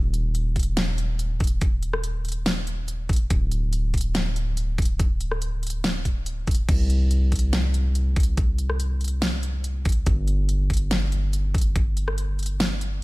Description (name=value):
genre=future bass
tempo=142 BPM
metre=4/4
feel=half-time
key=Eb major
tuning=A4 = 440 Hz
part: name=long sustained 808-style bass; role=bass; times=0.0-13.0 s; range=D1 to C2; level=-24 LUFS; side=equal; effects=sidechain pumping
part: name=pop drum kit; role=drums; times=0.1-12.9 s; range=crash cymbal, hi-hat, rim click, snare drum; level=-28 LUFS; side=equal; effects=studio ambience
part: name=electronic kick drum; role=drums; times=0.6-11.8 s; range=none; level=-22 LUFS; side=equal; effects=studio ambience
room=digital ambience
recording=lossy compression artefacts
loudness=-21 LUFS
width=side -21 dB against mid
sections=0.0-13.0 A section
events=none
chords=none